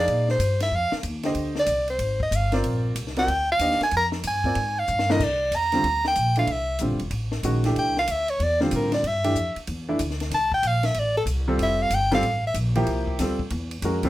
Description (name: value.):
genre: modal jazz.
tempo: 188 BPM.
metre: 4/4.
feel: swing 64% on 8ths.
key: Bb mixolydian, C mixolydian from 5.2 s.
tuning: A4 = 440 Hz.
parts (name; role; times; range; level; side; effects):
warm soprano saxophone; melody; 0.0-12.6 s; G4 to Bb5; -23 LUFS; equal; none.
warm baby grand piano; accompaniment; 0.0-14.1 s; C2 to F5; -26 LUFS; equal; none.
upright bass; bass; 0.0-14.1 s; E1 to Bb2; -27 LUFS; equal; none.
compact cocktail drum kit; drums; 0.1-14.1 s; crash cymbal, hi-hat, kick drum, ride cymbal, snare drum; -33 LUFS; left 2 dB; none.
room: light reverb.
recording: none.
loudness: -21 LUFS.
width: side -15 dB against mid.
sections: 0.0-5.2 A section; 5.2-14.1 A section.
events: soprano saxophone solo 0.0-14.1; drum fill 4.9-5.2.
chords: 0.0 Bb13; 5.2 C13; 10.3 F.